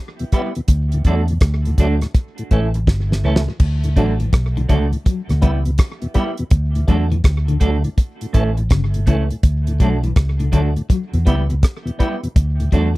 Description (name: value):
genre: roots reggae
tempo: 82 BPM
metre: 4/4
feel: swing 64% on 16ths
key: D major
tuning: A4 = 440 Hz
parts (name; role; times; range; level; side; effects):
- tonewheel organ; accompaniment; 0.2-12.8 s; D2 to E4; -25 LUFS; left 1 dB; overdrive, chorus vibrato, slapback echo
- damped 70s drum kit; drums; 0.2-12.9 s; crash cymbal, hi-hat, kick drum, rim click, snare drum; -15 LUFS; equal; none
- semi-hollow electric guitar; accompaniment; 0.3-12.9 s; G3 to A4; -24 LUFS; right 3 dB; tape echo
- vintage muted fingered electric bass; bass; 0.7-13.0 s; G1 to E2; -18 LUFS; equal; none
- clean electric guitar; arpeggios; 4.0-13.0 s; C#3 to F#3; -25 LUFS; left 6 dB; tremolo
room: little or no reverb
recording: dry, close 1970s-style studio recording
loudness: -15 LUFS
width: side -19 dB against mid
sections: 0.0-13.0 A section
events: drum fill 2.9-3.6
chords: 0.0 Em; 0.7 D; 2.1 A; 3.6 D; 5.1 Em; 6.5 D; 8.0 A; 9.4 D; 10.9 Em; 12.4 D